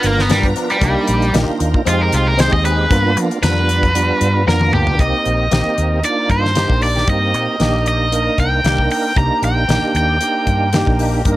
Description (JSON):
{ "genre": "straight-eighth soul blues", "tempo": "115 BPM", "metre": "4/4", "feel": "swing 54% on 16ths", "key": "C minor", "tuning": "A4 = 439 Hz", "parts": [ { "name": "cranked stack guitar", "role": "melody", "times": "0.0-11.4 s", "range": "G3 to Bb5", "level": "-18 LUFS", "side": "right 1 dB", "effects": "overdrive" }, { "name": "tonewheel organ", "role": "accompaniment", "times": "0.0-11.4 s", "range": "G3 to B4", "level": "-20 LUFS", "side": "right 3 dB", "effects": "slow rotary speaker, overdrive, chorus vibrato" }, { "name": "brilliant horn section", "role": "sustained chords", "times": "0.0-11.4 s", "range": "F4 to A#5", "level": "-31 LUFS", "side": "equal", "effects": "plate reverb" }, { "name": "vintage muted fingered electric bass", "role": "bass", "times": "0.0-11.4 s", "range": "G1 to F3", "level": "-18 LUFS", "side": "equal", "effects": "none" }, { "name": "damped 70s drum kit", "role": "drums", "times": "0.0-11.4 s", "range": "hi-hat, kick drum, snare drum, toms", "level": "-19 LUFS", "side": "left 1 dB", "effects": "none" }, { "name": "direct-recorded clean electric guitar", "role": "stabs", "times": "0.3-11.3 s", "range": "F3 to A#4", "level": "-25 LUFS", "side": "left 5 dB", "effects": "ensemble chorus, plate reverb" } ], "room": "moderate studio ambience, RT60 0.5 s", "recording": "none", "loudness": "-13 LUFS", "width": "side -16 dB against mid", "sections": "0.0-5.0 A section; 5.0-11.4 B section", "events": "overdriven electric guitar solo 0.0-5.0; drum fill 4.5-5.0", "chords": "0.0 G7#9; 0.8 Cm7; 1.9 Fm7; 2.9 G7#9; 5.0 Cm7" }